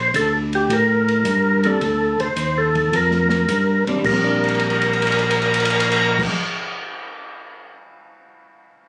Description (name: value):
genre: soul jazz organ trio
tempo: 108 BPM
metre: 4/4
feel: swing 69% on 8ths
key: Bb major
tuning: A4 = 440 Hz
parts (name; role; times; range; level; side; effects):
- percussive tonewheel organ; melody; 0.0-6.2 s; G4 to C5; -21 LUFS; equal; overdrive, chorus vibrato, slow rotary speaker, plate reverb
- tonewheel organ; bass; 0.0-6.2 s; Bb1 to A2; -24 LUFS; equal; overdrive, slow rotary speaker
- open jazz drum kit; drums; 0.1-7.7 s; crash cymbal, hi-hat, kick drum, ride cymbal, snare drum; -27 LUFS; equal; none
- hollow-body jazz guitar; accompaniment; 1.6-6.4 s; G3 to D4; -26 LUFS; equal; none
room: moderate studio reverb, RT60 0.6 s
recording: recorded on a phone in the room, studio ambience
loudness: -19 LUFS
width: mono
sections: 0.0-4.0 A section; 4.0-6.3 B section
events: drum fill 4.3-6.1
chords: 0.0 Bb6; 4.0 Bb69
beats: 0.14 0.70 1.26 | 1.81 2.37 2.93 3.49 | 4.04 4.60 5.16 5.71